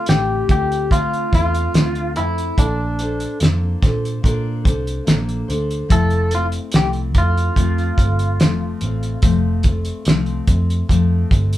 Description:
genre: indie pop, bedroom pop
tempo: 72 BPM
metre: 4/4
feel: straight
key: F major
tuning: A4 = 438 Hz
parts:
  - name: electric guitar through a small old amp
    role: melody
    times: 0.0-11.6 s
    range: D4 to A4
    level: -22 LUFS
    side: left 1 dB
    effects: none
  - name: fingerpicked steel-string acoustic guitar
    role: accompaniment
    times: 0.0-11.6 s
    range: D3 to C5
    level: -24 LUFS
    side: left 4 dB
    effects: warbly pitch drift
  - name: vintage muted fingered electric bass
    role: bass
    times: 0.1-11.6 s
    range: F1 to D3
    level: -20 LUFS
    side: equal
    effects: none
  - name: cloth-damped thuddy drum kit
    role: drums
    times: 0.1-11.6 s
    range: hi-hat, kick drum, snare drum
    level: -17 LUFS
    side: equal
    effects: none
room: moderate studio ambience, RT60 0.5 s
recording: band playing live in one room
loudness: -16 LUFS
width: side -14 dB against mid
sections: 0.0-11.6 A section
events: none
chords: 0.0 Dm7; 2.6 Bbmaj9; 5.9 Fmaj7

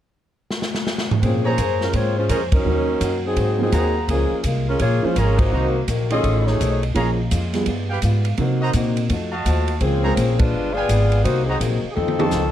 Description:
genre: jazz, big band swing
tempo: 168 BPM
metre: 4/4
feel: swing 64% on 8ths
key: Bb minor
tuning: A4 = 440 Hz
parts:
  - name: swinging big-band drum kit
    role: drums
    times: 0.5-12.4 s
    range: hi-hat, kick drum, ride cymbal, snare drum, toms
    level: -25 LUFS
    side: equal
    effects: none
  - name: warm saxophone section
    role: melody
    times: 1.2-6.8, 9.8-12.5 s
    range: F3 to Eb5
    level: -22 LUFS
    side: left 1 dB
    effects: none
  - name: picked acoustic archtop guitar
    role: accompaniment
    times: 1.2-12.5 s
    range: F2 to C5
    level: -29 LUFS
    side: left 4 dB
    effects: none
  - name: upright bass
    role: bass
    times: 1.2-12.5 s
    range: G1 to C3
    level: -21 LUFS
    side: equal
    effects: none
  - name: dark upright piano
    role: accompaniment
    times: 1.4-12.3 s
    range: Eb3 to C5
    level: -26 LUFS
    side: right 3 dB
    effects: none
  - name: clear trumpet section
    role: stabs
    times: 1.4-12.5 s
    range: F4 to Db6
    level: -27 LUFS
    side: right 2 dB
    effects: none
room: light reverb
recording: dark, warm production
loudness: -17 LUFS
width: side -11 dB against mid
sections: 0.0-1.2 A section; 1.2-12.5 B section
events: drum fill 0.5-1.2, 12.0-12.3; band accent 2.5, 5.3, 10.3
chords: 0.0 N.C.; 1.2 Bbm9; 2.7 Ebm7; 3.4 Ab9; 4.1 Db6; 5.5 Cm7b5; 6.2 F7alt; 6.9 Bbm7; 7.7 G7b9; 8.4 Cm7b5; 9.1 F7b9; 9.8 Bbm9; 10.5 G7b9; 11.2 Cm7b5; 12.0 F7b13

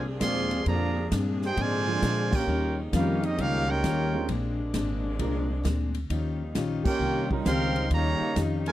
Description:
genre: jazz, big band swing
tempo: 132 BPM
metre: 4/4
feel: swing 66% on 8ths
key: unclear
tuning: A4 = 439 Hz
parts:
  - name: clear trumpet section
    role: melody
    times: 0.0-8.7 s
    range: Db4 to C6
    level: -30 LUFS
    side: right 2 dB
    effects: none
  - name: mellow trombone section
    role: second line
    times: 0.0-8.7 s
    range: Db3 to G4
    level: -32 LUFS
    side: right 2 dB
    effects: none
  - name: picked steel-string acoustic guitar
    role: accompaniment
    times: 0.0-8.7 s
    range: Bb2 to G4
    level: -32 LUFS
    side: left 4 dB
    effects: none
  - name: warm saxophone section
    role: sustained chords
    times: 0.0-8.7 s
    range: C3 to Ab4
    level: -36 LUFS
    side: left 2 dB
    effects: none
  - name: upright bass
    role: bass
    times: 0.0-8.7 s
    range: Ab1 to Bb2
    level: -29 LUFS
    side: equal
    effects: none
  - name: swinging big-band drum kit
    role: drums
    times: 0.2-8.7 s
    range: crash cymbal, hi-hat, kick drum, ride cymbal, snare drum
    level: -32 LUFS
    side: right 1 dB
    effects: none
  - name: warm concert grand piano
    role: accompaniment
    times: 1.9-7.5 s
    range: F3 to Bb4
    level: -35 LUFS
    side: right 7 dB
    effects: none
room: small room ambience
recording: dry, close 1970s-style studio recording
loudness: -24 LUFS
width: side -14 dB against mid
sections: 0.0-8.7 A section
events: band accent 2.2, 6.8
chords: 0.0 Bb9; 2.5 Eb9; 4.3 Bb9; 6.1 Eb9

